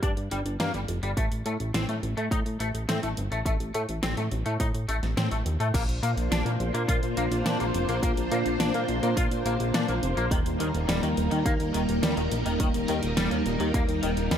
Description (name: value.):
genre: synthwave.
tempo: 105 BPM.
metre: 4/4.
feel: straight.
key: unclear.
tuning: A4 = 441 Hz.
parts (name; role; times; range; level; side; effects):
twangy electric guitar; riff; 0.0-14.4 s; Eb3 to F4; -32 LUFS; left 3 dB; ensemble chorus, tape echo.
chorused synth bass; bass; 0.0-14.4 s; Eb1 to Bb2; -29 LUFS; equal; tube saturation.
electronic kick drum; drums; 0.0-13.9 s; none; -28 LUFS; equal; none.
pop drum kit; drums; 0.0-14.4 s; crash cymbal, hi-hat, snare drum; -32 LUFS; equal; gated reverb.
string machine, full ensemble; sustained chords; 6.0-14.4 s; G3 to C5; -28 LUFS; equal; ensemble chorus, sidechain pumping.
room: light reverb, digital ambience.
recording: none.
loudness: -24 LUFS.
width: side -9 dB against mid.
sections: 0.0-5.7 A section; 5.7-14.4 B section.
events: kick drops out 5.2-5.7.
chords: 0.0 G7(no3); 1.2 N.C.; 5.7 Bbadd9; 10.3 Eb.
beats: 0.03 0.60 | 1.17 1.74 2.31 2.88 | 3.46 4.03 4.60 5.17 | 5.74 6.31 6.88 7.46 | 8.03 8.60 9.17 9.74 | 10.31 10.88 11.46 12.03 | 12.60 13.17 13.74 14.31.